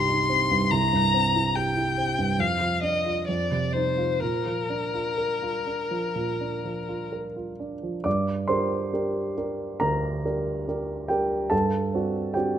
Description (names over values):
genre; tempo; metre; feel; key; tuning
classical, romantic duo for violin and grand piano; 61-72 BPM; 4/4; rubato; Bb major, G minor from 8.1 s; A4 = 440 Hz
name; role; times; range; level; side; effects
rich violin; melody; 0.0-7.1 s; Bb4 to C6; -25 LUFS; left 4 dB; none
warm grand piano; accompaniment; 0.0-12.6 s; C2 to D6; -25 LUFS; right 2 dB; none
room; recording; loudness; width
moderate recital hall reverb, RT60 1.6 s; close, detailed microphones; -23 LUFS; side -9 dB against mid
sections
0.0-8.1 A section; 8.1-12.6 B section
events
none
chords
0.0 Cm; 0.7 C7; 2.4 Dm/F; 3.3 F5; 4.2 Bb; 8.1 Gm; 11.5 D7/G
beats
| 0.71 1.55 2.39 3.27 | 4.21 5.18 6.16 7.12 | 8.06 8.94 9.82 10.68 | 11.52 12.36